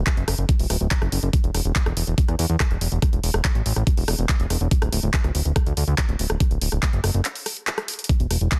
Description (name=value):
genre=psychedelic trance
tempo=142 BPM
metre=4/4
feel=straight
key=unclear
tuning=A4 = 438 Hz
part: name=fat analog bass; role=bass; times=0.0-8.5 s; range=D1 to E2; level=-24 LUFS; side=equal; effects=none
part: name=drum and bass drum kit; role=drums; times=0.1-8.6 s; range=handclaps, hi-hat, rim click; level=-29 LUFS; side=equal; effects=overdrive, small room ambience
part: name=electronic kick drum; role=drums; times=0.1-8.6 s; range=none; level=-23 LUFS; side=equal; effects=overdrive, small room ambience
room=digital ambience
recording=dense, heavily limited modern master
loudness=-22 LUFS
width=mono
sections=0.0-8.6 A section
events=break 7.2-8.1; drum fill 7.9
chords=none